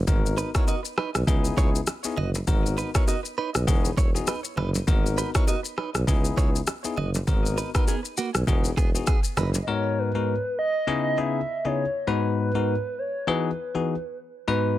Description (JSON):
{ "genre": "afrobeats", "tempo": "100 BPM", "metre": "4/4", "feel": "swing 58% on 16ths", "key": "G# minor", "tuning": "A4 = 441 Hz", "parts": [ { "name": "warm tuba", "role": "bass", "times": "0.0-9.6 s", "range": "E1 to C#2", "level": "-27 LUFS", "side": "equal", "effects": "none" }, { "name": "bell-like tine electric piano", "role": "accompaniment", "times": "0.1-14.8 s", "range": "G#2 to B4", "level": "-27 LUFS", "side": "left 5 dB", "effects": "plate reverb" }, { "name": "afro-pop drum kit", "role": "drums", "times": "0.1-9.7 s", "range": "kick drum, rim click, shaker", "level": "-24 LUFS", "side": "equal", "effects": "soft clipping on snare" }, { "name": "congas and bongos", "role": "percussion", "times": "0.1-9.7 s", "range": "none", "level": "-33 LUFS", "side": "right 3 dB", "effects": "none" }, { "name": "direct-recorded clean electric guitar", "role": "riff", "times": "0.4-9.5 s", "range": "A#3 to D#5", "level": "-32 LUFS", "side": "right 7 dB", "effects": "vibrato effect, tape echo" }, { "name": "hollow clarinet-like synth lead", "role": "melody", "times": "9.6-14.8 s", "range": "B4 to E5", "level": "-27 LUFS", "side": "right 3 dB", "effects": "chorus, plate reverb, tape echo" } ], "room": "light reverb", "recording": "dense, heavily limited modern master", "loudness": "-22 LUFS", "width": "side -14 dB against mid", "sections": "0.0-9.7 A section; 9.7-14.8 B section", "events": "none", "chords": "0.1 G#m9; 1.3 C#m9; 2.5 G#m9; 3.7 Emaj7; 4.9 G#m9; 6.1 C#m9; 7.3 G#m9; 8.5 Emaj7; 9.7 G#m9; 10.9 C#m9; 12.1 G#m9; 13.3 Emaj7", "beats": "| 0.07 0.68 1.27 1.88 | 2.48 3.08 3.67 4.28 | 4.88 5.47 6.08 6.67 | 7.28 7.88 8.47 9.07 | 9.68 10.28 10.88 11.47 | 12.07 12.68 13.28 13.88 | 14.47" }